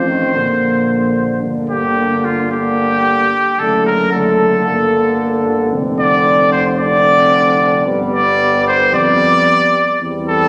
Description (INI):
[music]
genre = classical, brass quintet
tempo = 111 BPM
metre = 4/4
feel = straight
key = unclear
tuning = A4 = 439 Hz
[part]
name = bright trumpet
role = melody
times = 0.0-10.5 s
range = F4 to D5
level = -17 LUFS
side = equal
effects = none
[part]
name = mellow flugelhorn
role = second line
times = 0.0-10.5 s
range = F4 to D5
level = -24 LUFS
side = equal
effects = none
[part]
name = bright trombone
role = accompaniment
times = 0.0-10.5 s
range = D3 to G3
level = -24 LUFS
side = equal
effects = none
[part]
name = mellow French horn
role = accompaniment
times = 0.0-10.5 s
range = A3 to C4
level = -22 LUFS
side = equal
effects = none
[part]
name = mellow tuba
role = bass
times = 0.0-10.5 s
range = F1 to F2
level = -24 LUFS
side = equal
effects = none
[sound]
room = wet recital hall reverb, RT60 1.4 s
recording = none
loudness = -14 LUFS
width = mono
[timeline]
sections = 0.0-10.5 A section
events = none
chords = 0.4 Bb; 1.4 Gm; 3.6 D/F#; 4.7 Gm; 5.7 Dm7/F; 7.9 G; 8.9 G7/F